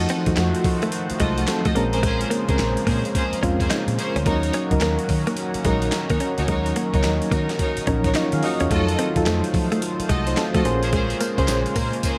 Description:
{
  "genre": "R&B, new jack swing",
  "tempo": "108 BPM",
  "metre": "4/4",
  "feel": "swing 63% on 16ths",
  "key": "Bb minor",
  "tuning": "A4 = 439 Hz",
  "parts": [
    { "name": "soft electric-piano-like synth keys", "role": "accompaniment", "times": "0.0-12.2 s", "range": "F3 to F5", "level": "-27 LUFS", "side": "equal", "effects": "chorus, tremolo, shimmer reverb" },
    { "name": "chorused pulse-width pad", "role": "sustained chords", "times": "0.0-12.2 s", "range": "Db3 to C5", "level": "-31 LUFS", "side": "equal", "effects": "shimmer reverb" },
    { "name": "clear studio string section", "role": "stabs", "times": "0.0-12.2 s", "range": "Db4 to Eb5", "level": "-32 LUFS", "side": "equal", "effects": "shimmer reverb" },
    { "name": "vintage muted fingered electric bass", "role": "bass", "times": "0.0-11.9 s", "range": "Bb1 to F3", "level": "-28 LUFS", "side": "equal", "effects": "none" },
    { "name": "direct-recorded clean electric guitar", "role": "riff", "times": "0.1-11.9 s", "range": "Ab3 to Eb4", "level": "-31 LUFS", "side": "equal", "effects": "subtle chorus, shimmer reverb" },
    { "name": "dusty soul sampler-style drum kit", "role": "drums", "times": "0.1-12.2 s", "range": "handclaps, hi-hat, kick drum, snare drum, tambourine", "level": "-28 LUFS", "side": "equal", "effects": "none" }
  ],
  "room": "light reverb",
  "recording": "none",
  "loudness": "-22 LUFS",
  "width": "mono",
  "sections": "0.0-12.2 A section",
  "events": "none",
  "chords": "0.0 F7b9; 1.8 Bbm9; 4.3 Ebm7; 8.7 F7b9; 10.6 Bbm9"
}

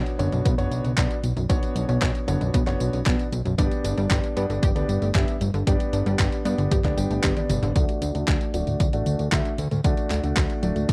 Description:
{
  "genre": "italo disco",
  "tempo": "115 BPM",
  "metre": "4/4",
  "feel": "straight",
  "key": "D major",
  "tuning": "A4 = 440 Hz",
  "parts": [
    { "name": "analog pluck", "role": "arpeggios", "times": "0.0-10.9 s", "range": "F#2 to G4", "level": "-32 LUFS", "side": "equal", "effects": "chorus, tape echo" },
    { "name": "warm concert grand piano", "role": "stabs", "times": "0.0-10.9 s", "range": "A3 to G5", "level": "-31 LUFS", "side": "equal", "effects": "low-pass filter, tape echo" },
    { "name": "fat analog bass", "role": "bass", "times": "0.0-10.9 s", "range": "D1 to G2", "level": "-29 LUFS", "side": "equal", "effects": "none" },
    { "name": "gated 80s digital drum machine", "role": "drums", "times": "0.1-10.9 s", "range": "handclaps, hi-hat, tambourine, toms", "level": "-33 LUFS", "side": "equal", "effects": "gated reverb, high-pass filter on hats, high-pass filter on perc, high-pass filter on snare, high-pass filter on toms, high-pass filter on room" },
    { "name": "electronic kick drum", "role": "drums", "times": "0.5-10.9 s", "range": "none", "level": "-26 LUFS", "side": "equal", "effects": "overdrive" }
  ],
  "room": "little or no reverb",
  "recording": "dry, close 1970s-style studio recording",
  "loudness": "-23 LUFS",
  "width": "mono",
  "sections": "0.0-7.8 A section; 7.8-10.9 B section",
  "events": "drum fill 7.2-7.8; filter sweep on grand piano 7.8-10.9",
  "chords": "0.0 Bmadd9; 3.6 G; 7.8 D"
}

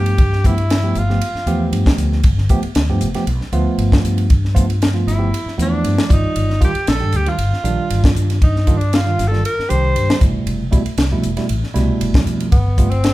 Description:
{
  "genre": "electric jazz fusion",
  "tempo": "117 BPM",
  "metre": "4/4",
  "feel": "straight",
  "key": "G mixolydian",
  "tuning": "A4 = 440 Hz",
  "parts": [
    { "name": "breathy tenor saxophone", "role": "melody", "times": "0.0-1.7, 5.1-13.1 s", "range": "B3 to C5", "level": "-22 LUFS", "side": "equal", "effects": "none" },
    { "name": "tine electric piano", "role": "accompaniment", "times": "0.0-13.0 s", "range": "B2 to D5", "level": "-22 LUFS", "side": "right 3 dB", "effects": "none" },
    { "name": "mellow fretless electric bass", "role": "bass", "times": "0.0-13.1 s", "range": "E1 to G2", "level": "-18 LUFS", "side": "equal", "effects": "none" },
    { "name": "tight funk drum kit", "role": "drums", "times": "0.1-13.1 s", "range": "hi-hat, kick drum, ride cymbal, snare drum", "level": "-17 LUFS", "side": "equal", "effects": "none" }
  ],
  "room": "moderate large studio reverb, RT60 0.9 s",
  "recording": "band playing live in one room",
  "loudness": "-14 LUFS",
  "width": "side -17 dB against mid",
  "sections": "0.0-13.1 A section",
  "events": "none",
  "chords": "0.0 G9; 6.1 Ebmaj9/G; 10.2 Fmaj9#11; 12.5 G9sus4"
}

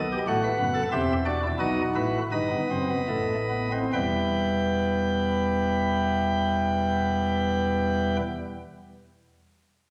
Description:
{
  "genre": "classical, baroque-style 4-part fugue for pipe organ",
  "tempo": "67-96 BPM",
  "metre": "3/4",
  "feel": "straight",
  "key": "E minor",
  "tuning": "A4 = 442 Hz",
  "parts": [
    { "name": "pipe organ, sparkling flutes", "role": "solo", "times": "0.0-8.2 s", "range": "E1 to G5", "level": "-26 LUFS", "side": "equal", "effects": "none" }
  ],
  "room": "wet recital hall reverb, RT60 1.6 s",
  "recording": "none",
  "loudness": "-26 LUFS",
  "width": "mono",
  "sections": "0.0-3.9 A section; 3.9-9.3 B section",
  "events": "slowing down 0.0-3.9",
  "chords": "0.0 B7; 0.9 Em; 1.6 B7; 3.9 Em"
}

